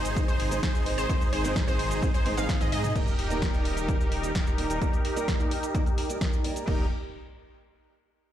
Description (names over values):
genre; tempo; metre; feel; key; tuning
EDM, festival progressive house; 129 BPM; 4/4; straight; Eb major; A4 = 439 Hz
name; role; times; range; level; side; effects
lush unison pad; sustained chords; 0.0-2.9 s; C3 to Eb4; -41 LUFS; left 1 dB; none
wide unison pluck; arpeggios; 0.0-2.9 s; C5 to F5; -35 LUFS; equal; sidechain pumping, digital delay
supersaw chords; riff; 0.0-6.8 s; Eb4 to F5; -32 LUFS; equal; sidechain pumping, low-pass filter, digital delay
detuned saw bass; bass; 0.0-6.9 s; Eb1 to Ab2; -32 LUFS; equal; sidechain pumping
house drum kit; drums; 0.0-6.8 s; cabasa, crash cymbal, hi-hat, snare drum, toms; -36 LUFS; left 1 dB; none
fingerpicked acoustic archtop guitar; accompaniment; 0.2-6.9 s; G3 to C5; -36 LUFS; right 4 dB; sidechain pumping, digital delay
electronic kick drum; drums; 0.2-6.8 s; none; -27 LUFS; equal; none
sub drop; sound effects; 3.0-4.8 s; none; -37 LUFS; left 1 dB; none
room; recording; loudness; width
digital ambience; played on a big sound system in a bare room, large studio reverb; -24 LUFS; side -11 dB against mid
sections
0.0-3.0 A section; 3.0-6.7 B section; 6.7-8.3 C section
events
drop 0.0-3.0; drum fill 2.3-3.0; impact 3.0-4.8; filter sweep on supersaw synth 3.0-6.7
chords
0.0 Ab; 3.0 Eb